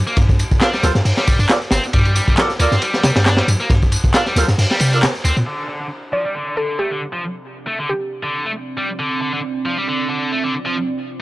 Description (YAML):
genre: breakbeat, breaks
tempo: 136 BPM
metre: 4/4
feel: swing 55% on 16ths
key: D minor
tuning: A4 = 440 Hz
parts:
  - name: warm 808-style bass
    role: bass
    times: 0.0-5.4 s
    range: G1 to C3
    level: -16 LUFS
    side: equal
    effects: none
  - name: high-gain distorted guitar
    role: riff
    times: 0.1-10.8 s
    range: D3 to D4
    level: -22 LUFS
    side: equal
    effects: distortion, vintage 12-bit sampler grit, low-pass filter, tape echo
  - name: electronic tambourine and handclaps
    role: drums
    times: 0.1-5.4 s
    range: none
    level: -24 LUFS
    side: equal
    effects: low-pass filter on perc, low-pass filter on snare
  - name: crunchy breakbeat drum kit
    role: drums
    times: 0.2-5.4 s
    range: hi-hat, kick drum, ride cymbal, snare drum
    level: -18 LUFS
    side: equal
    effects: none
  - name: mellow horn section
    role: stabs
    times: 0.6-5.0 s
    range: F4 to F5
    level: -23 LUFS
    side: right 2 dB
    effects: tape echo
  - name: deep dark ambient pad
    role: sustained chords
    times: 7.6-11.2 s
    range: C4 to D5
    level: -26 LUFS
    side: right 4 dB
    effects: chorus, built-in reverb, sidechain pumping
  - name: mallet-like synth pluck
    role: melody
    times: 6.1-8.5 s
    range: G4 to D5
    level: -23 LUFS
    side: equal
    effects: chorus, telephone sound, cassette tape, tape echo
room: little or no reverb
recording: dry, gritty hardware recording, cassette tape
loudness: -15 LUFS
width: side -18 dB against mid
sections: 0.0-5.5 A section; 5.5-11.2 B section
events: kick drops out 4.6-5.5; band accent 5.0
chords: 0.0 Gm7; 5.5 Dm7